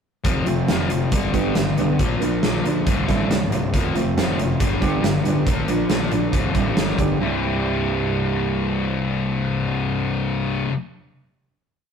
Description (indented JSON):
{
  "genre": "quiet-loud alternative rock",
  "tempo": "138 BPM",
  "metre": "4/4",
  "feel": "straight",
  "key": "C major",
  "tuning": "A4 = 443 Hz",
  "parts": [
    { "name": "thick fuzz guitar", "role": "riff", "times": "0.2-10.7 s", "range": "C2 to E4", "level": "-22 LUFS", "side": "left 4 dB", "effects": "distortion" },
    { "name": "fuzz picked electric bass", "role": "bass", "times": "0.2-10.6 s", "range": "C1 to D2", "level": "-28 LUFS", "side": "equal", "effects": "overdrive" },
    { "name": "big rock drum kit", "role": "drums", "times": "0.2-7.1 s", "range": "hi-hat, kick drum, snare drum", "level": "-22 LUFS", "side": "right 1 dB", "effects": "none" },
    { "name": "fingerpicked steel-string acoustic guitar", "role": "arpeggios", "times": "0.5-10.7 s", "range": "C2 to Bb4", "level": "-26 LUFS", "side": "right 6 dB", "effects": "none" }
  ],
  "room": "light reverb",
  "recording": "rough rehearsal-room recording, warm saturation",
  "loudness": "-19 LUFS",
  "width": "side -7 dB against mid",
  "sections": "0.3-7.2 verse; 7.2-10.7 final chord",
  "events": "none",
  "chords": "0.3 F; 1.1 G; 2.0 Bb; 2.9 C; 3.7 F; 4.6 G; 5.5 Bb; 6.3 C; 6.8 G; 7.2 C"
}